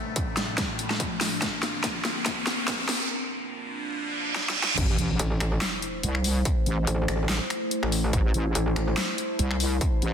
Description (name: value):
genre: heavy wobble dubstep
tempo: 143 BPM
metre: 4/4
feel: swing 55% on 16ths, half-time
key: A minor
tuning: A4 = 440 Hz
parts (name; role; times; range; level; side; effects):
- evolving wavetable pad; sustained chords; 0.0-10.1 s; A2 to C5; -32 LUFS; left 1 dB; phaser, built-in reverb, sidechain pumping
- riser, reverse cymbal and sub drop; sound effects; 0.1-6.5 s; none; -33 LUFS; right 2 dB; none
- dubstep drum kit; drums; 0.2-10.1 s; crash cymbal, finger snaps, handclaps, hi-hat, snare drum; -28 LUFS; equal; soft clipping on snare
- electronic kick drum; drums; 0.2-9.9 s; none; -28 LUFS; equal; distortion
- wobble bass; bass; 4.8-10.1 s; A1 to C2; -25 LUFS; equal; chorus, overdrive
- metallic wobble bass; bass; 5.2-9.0 s; A1; -26 LUFS; equal; chorus, overdrive
room: moderate lush hall reverb, RT60 1.7 s, digital ambience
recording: dense, heavily limited modern master, high-pass filter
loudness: -24 LUFS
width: side -8 dB against mid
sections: 0.0-4.8 A section; 4.8-10.1 B section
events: build-up 0.0-4.8; drum fill 0.0-3.1, 4.4-4.8; riser 0.1-3.1; filter sweep 0.0-4.8; reverse cymbal 4.1-4.8; drop 4.8-10.1; impact 4.8-6.5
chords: 0.0 F6/A; 1.4 Bbadd9; 3.1 Bdim; 4.8 Am